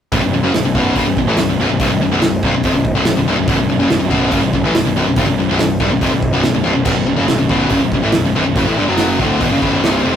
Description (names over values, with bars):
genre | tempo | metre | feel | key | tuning
heavy metal | 142 BPM | 4/4 | straight | B phrygian | A4 = 440 Hz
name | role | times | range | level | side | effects
high-gain distorted guitar | riff | 0.1-10.2 s | B1 to F#3 | -15 LUFS | left 3 dB | distortion
scooped high-gain guitar | riff | 0.1-10.1 s | B1 to F#3 | -21 LUFS | right 8 dB | distortion
fuzz picked electric bass | bass | 0.1-10.1 s | B0 to A1 | -20 LUFS | right 1 dB | overdrive
modern studio drum kit | drums | 0.1-9.9 s | crash cymbal, hi-hat, kick drum, snare drum | -20 LUFS | right 2 dB | none
room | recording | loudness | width
moderate stone room reverb, RT60 1.0 s | rough rehearsal-room recording, tube saturation | -12 LUFS | side -9 dB against mid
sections
0.1-10.2 A section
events
none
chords
0.1 B5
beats
| 0.12 0.54 0.96 1.38 | 1.80 2.22 2.64 3.06 | 3.48 3.90 4.33 4.75 | 5.17 5.59 6.01 6.44 | 6.86 7.29 7.71 8.13 | 8.56 8.98 9.40 9.83